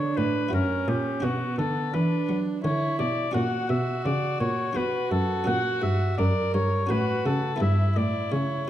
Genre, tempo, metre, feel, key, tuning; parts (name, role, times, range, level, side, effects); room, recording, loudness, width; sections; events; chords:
classical, baroque-style sonata movement with continuo; 85 BPM; 3/4; straight; B minor; A4 = 441 Hz
clear oboe; melody; 0.0-8.7 s; F#4 to F#5; -29 LUFS; left 5 dB
warm violin; second line; 0.0-8.7 s; B3 to A#4; -30 LUFS; right 5 dB
buff-stop harpsichord; accompaniment; 0.0-8.7 s; F#2 to F#4; -32 LUFS; left 1 dB
warm cello; bass; 0.0-8.7 s; F#2 to F#3; -27 LUFS; equal
wet recital hall reverb, RT60 1.6 s; dark, warm production; -23 LUFS; side -12 dB against mid
0.0-8.7 A section
0.0 Bm; 0.5 F#7; 1.2 Bm; 3.4 F#/A#; 4.8 Bm; 5.5 F#; 6.9 F#m/A; 7.6 Em/G